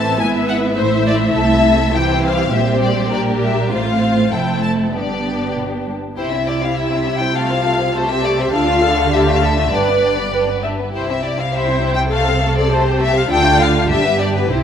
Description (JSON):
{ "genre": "quick classical-period movement for string orchestra", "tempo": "101 BPM", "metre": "2/4", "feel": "rubato", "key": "C major", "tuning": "A4 = 440 Hz", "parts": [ { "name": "warm studio violin section", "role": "melody", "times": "0.0-14.6 s", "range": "B4 to A5", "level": "-20 LUFS", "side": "left 5 dB", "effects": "none" }, { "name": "rich studio violin section", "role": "second line", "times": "0.0-14.6 s", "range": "A3 to E5", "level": "-21 LUFS", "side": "left 2 dB", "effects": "none" }, { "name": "warm studio viola section", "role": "accompaniment", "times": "0.0-14.6 s", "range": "E3 to E5", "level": "-19 LUFS", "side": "right 1 dB", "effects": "none" }, { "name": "warm studio double bass section", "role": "bass", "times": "0.0-14.6 s", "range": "F1 to D2", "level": "-22 LUFS", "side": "right 3 dB", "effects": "none" }, { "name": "warm symphonic cello section", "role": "bass", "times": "0.0-14.6 s", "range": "F2 to D3", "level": "-23 LUFS", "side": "right 3 dB", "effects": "none" } ], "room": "moderate scoring stage reverb, RT60 1.6 s", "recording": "none", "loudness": "-14 LUFS", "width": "side -8 dB against mid", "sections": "0.0-6.2 A section; 6.2-14.6 B section", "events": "none", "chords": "0.2 E/G#; 0.8 Am; 1.4 C; 2.5 C5/Bb; 3.7 F/A; 4.3 F; 4.9 G; 6.2 C; 7.3 F/C; 8.5 Dm; 9.7 G; 10.9 C; 12.1 C5; 13.3 Dm; 13.9 G", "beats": "| 0.21 0.79 | 1.37 1.96 | 2.53 3.12 | 3.72 4.32 | 4.93 5.55 | 6.16 6.76 | 7.35 7.94 | 8.53 9.12 | 9.72 10.33 | 10.94 11.54 | 12.12 12.71 | 13.29 13.88 | 14.49" }